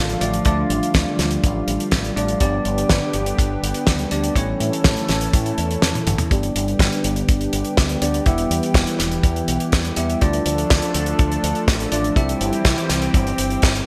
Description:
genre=italo disco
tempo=123 BPM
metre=4/4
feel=straight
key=D dorian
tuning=A4 = 440 Hz
part: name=lush unison pad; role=sustained chords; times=0.0-13.9 s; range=D3 to A4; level=-26 LUFS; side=equal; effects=chorus
part: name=bell-like tine electric piano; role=stabs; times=0.0-13.8 s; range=A3 to E5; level=-27 LUFS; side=equal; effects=lush chorus, low-pass filter, digital delay
part: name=fingered electric bass with an envelope filter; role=bass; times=0.0-13.8 s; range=E1 to A2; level=-28 LUFS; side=equal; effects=tube saturation
part: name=damped 70s drum kit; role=drums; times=0.1-13.8 s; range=hi-hat, snare drum, toms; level=-25 LUFS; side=equal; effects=high-pass filter on hats, studio reverb, high-pass filter on toms, high-pass filter on snare, high-pass filter on room, gated reverb
part: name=kick drum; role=drums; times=0.5-13.7 s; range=none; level=-20 LUFS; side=equal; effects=studio reverb
room=moderate plate reverb, RT60 1.5 s, small room ambience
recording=bright 1980s-style digital production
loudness=-19 LUFS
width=mono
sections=0.0-6.3 A section; 6.3-13.9 B section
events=kick drops out 5.8-6.3; drum fill 5.9-6.3; filter sweep on tine electric piano 6.3-13.9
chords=0.0 Dm; 2.4 G; 4.4 A; 6.3 G; 8.3 Em; 10.2 Dm; 12.2 C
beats=| 0.46 0.94 1.43 1.92 | 2.41 2.90 3.38 3.87 | 4.36 4.85 5.33 5.82 | 6.31 6.80 7.29 7.77 | 8.26 8.75 9.24 9.72 | 10.21 10.70 11.19 11.68 | 12.16 12.65 13.14 13.63

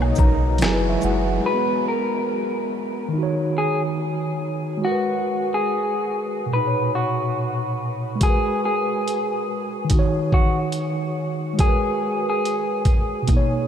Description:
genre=lo-fi hip hop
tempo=71 BPM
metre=4/4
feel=swing 64% on 16ths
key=G# minor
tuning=A4 = 440 Hz
part: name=mellow tine electric piano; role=accompaniment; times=0.0-13.7 s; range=A#2 to A#5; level=-23 LUFS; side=right 1 dB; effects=medium stereo tremolo, cassette tape, low-pass filter
part: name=warm analog pad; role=sustained chords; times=0.0-1.4 s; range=C#3 to F#4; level=-32 LUFS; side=left 3 dB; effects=none
part: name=soft dub sub bass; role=bass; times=0.0-1.4 s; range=F#1 to B1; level=-22 LUFS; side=equal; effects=none
part: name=woodblock and maracas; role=percussion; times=0.0-1.3 s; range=none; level=-40 LUFS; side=left 4 dB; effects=none
part: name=trip hop sampler-style drum kit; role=drums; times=0.2-1.3, 8.2-13.5 s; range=hi-hat, kick drum, shaker, snare drum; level=-21 LUFS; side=equal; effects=none
part: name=electric guitar through a small old amp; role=melody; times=1.5-13.2 s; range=F#4 to B4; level=-24 LUFS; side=left 1 dB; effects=low-pass filter, tape echo
room=moderate huge ambient reverb, RT60 8.4 s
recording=dreamy mix soaked in reverb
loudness=-19 LUFS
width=side -9 dB against mid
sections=0.0-1.4 A section; 1.4-13.7 B section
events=tine electric piano fill 0.0-1.4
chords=0.0 Bmaj9; 0.6 F#9sus4; 1.4 G#m9; 3.1 D#m7; 4.8 G#m9; 6.5 Bmaj9; 8.2 G#m9; 9.9 D#m7; 11.6 G#m9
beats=0.60 | 1.45 2.29 3.14 3.98 | 4.83 5.67 6.52 7.37 | 8.21 9.05 9.90 10.74 | 11.59 12.44 13.28

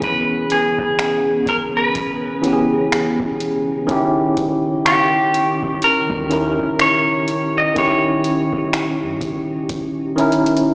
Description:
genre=contemporary R&B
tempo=62 BPM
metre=4/4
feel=swing 58% on 16ths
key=unclear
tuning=A4 = 437 Hz
part: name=clean electric guitar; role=melody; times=0.0-10.6 s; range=G4 to D#5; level=-18 LUFS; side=equal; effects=tape echo
part: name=bell-like tine electric piano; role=accompaniment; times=0.0-10.7 s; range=D#3 to A#4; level=-18 LUFS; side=equal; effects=medium stereo tremolo
part: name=glassy FM pad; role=sustained chords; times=0.2-10.7 s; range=C#3 to G#4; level=-25 LUFS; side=equal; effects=none
part: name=clean 808-style bass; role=bass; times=0.0-10.6 s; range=D#1 to G2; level=-37 LUFS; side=equal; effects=none
part: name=booming analog drum machine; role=drums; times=0.0-10.7 s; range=finger snaps, hi-hat, kick drum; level=-25 LUFS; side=equal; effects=overdrive
part: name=soft synth bell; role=texture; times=4.9-6.5 s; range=C#6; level=-23 LUFS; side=equal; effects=chorus, tape echo
room=moderate lush hall reverb, RT60 2.8 s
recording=played on a big sound system in a bare room, stone room reverb, small speaker sound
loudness=-15 LUFS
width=side -31 dB against mid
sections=0.0-10.7 A section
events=none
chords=0.0 E6; 3.9 D#7b9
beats=| 0.02 0.99 1.96 2.92 | 3.89 4.86 5.83 6.79 | 7.76 8.73 9.70 10.67

